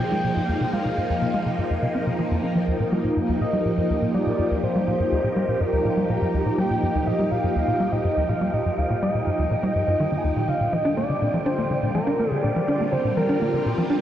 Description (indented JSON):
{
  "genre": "ambient, sequencer-driven space music",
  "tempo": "123 BPM",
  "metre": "4/4",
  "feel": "straight",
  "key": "unclear",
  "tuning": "A4 = 440 Hz",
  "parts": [
    { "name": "pulse-width lead", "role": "melody", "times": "0.0-14.0 s", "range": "Bb4 to Bb5", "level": "-26 LUFS", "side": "equal", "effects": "chorus, ping-pong delay" },
    { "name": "phased string machine", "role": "sustained chords", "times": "0.0-14.0 s", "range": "D3 to Ab4", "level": "-25 LUFS", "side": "equal", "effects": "ensemble chorus, phaser" },
    { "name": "tight sequencer bass", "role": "riff", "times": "0.0-14.0 s", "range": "Eb2 to D4", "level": "-25 LUFS", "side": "equal", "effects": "analog chorus, ping-pong delay" },
    { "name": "wind-like tuned noise texture", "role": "texture", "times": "0.0-14.0 s", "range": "G5", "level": "-38 LUFS", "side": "right 4 dB", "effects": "built-in reverb" }
  ],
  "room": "wet huge ambient reverb, RT60 8.4 s",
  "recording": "worn, warbling old tape, cassette tape, warbly pitch drift",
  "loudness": "-20 LUFS",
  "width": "side -11 dB against mid",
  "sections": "0.0-14.0 A section",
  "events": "fade-in on synth texture 0.0-14.0; filter sweep on analog synth bass 0.0-14.0",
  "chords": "0.0 Fm; 2.7 Eb; 10.5 Bb"
}